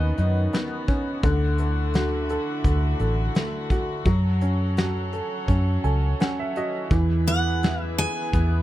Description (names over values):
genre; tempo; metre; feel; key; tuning
acoustic folk-pop ballad; 84 BPM; 4/4; straight; E major; A4 = 441 Hz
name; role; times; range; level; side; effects
picked steel-string acoustic guitar; melody; 0.0-0.9, 7.3-8.6 s; D#5 to G#5; -28 LUFS; equal; none
bright upright piano; accompaniment; 0.0-8.6 s; D3 to G#5; -27 LUFS; equal; none
warm chamber string section; sustained chords; 0.0-8.6 s; D3 to C#5; -34 LUFS; equal; none
vintage muted fingered electric bass; bass; 0.0-8.6 s; A1 to F#2; -22 LUFS; equal; none
soft brush drum kit; drums; 0.2-8.5 s; hi-hat, kick drum, snare drum; -24 LUFS; equal; none
room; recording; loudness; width
little or no reverb; close, detailed microphones; -21 LUFS; side -14 dB against mid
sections
0.0-8.6 A section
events
none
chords
0.0 Badd9/D#; 1.2 Dadd9; 4.1 F#m; 6.9 E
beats
0.53 | 1.24 1.94 2.65 3.35 | 4.06 4.77 5.48 6.20 | 6.91 7.62 8.33